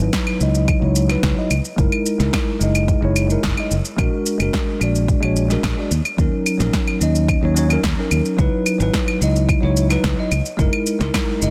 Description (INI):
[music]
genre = sunset chillout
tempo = 109 BPM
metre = 4/4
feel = straight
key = C# dorian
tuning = A4 = 440 Hz
[part]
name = bell-like tine electric piano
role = accompaniment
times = 0.0-11.5 s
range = F#3 to D#5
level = -23 LUFS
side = equal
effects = low-pass filter, digital delay
[part]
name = fingered electric bass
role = bass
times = 0.0-11.5 s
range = F#1 to D#2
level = -21 LUFS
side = equal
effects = none
[part]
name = electronic shaker, snare drum and claves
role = drums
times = 0.0-11.5 s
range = none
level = -27 LUFS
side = equal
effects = overdrive
[part]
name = electronic kick drum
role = drums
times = 0.1-11.3 s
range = none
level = -23 LUFS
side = equal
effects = overdrive
[sound]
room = light reverb, digital ambience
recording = dense, heavily limited modern master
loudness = -18 LUFS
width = mono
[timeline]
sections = 0.0-11.5 A section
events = filter sweep on tine electric piano 0.0-11.5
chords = 0.0 C#m11; 1.8 F#13; 4.0 A#7alt; 5.9 D#m7; 8.4 C#m11; 10.6 F#13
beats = 0.13 0.68 1.23 | 1.78 2.33 2.88 3.43 | 3.98 4.53 5.08 5.63 | 6.19 6.74 7.29 7.84 | 8.39 8.94 9.49 10.04 | 10.59 11.14